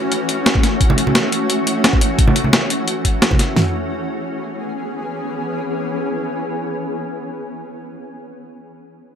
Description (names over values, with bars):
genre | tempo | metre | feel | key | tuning
liquid drum and bass | 174 BPM | 4/4 | straight | C# minor | A4 = 440 Hz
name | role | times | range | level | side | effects
shimmering ambient pad | sustained chords | 0.0-7.1 s | E3 to G#4 | -21 LUFS | left 1 dB | chorus, built-in reverb
breakbeat sampler-style drum kit | drums | 0.1-3.5 s | hi-hat, snare drum | -17 LUFS | equal | none
pop drum kit | drums | 0.6-3.6 s | kick drum, snare drum, toms | -16 LUFS | equal | none
congas | percussion | 0.9-3.4 s | none | -19 LUFS | right 2 dB | none
room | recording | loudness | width
light reverb | none | -16 LUFS | side -8 dB against mid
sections
0.0-3.6 A section; 3.6-6.3 B section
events
none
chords
0.0 A6; 3.6 C#m7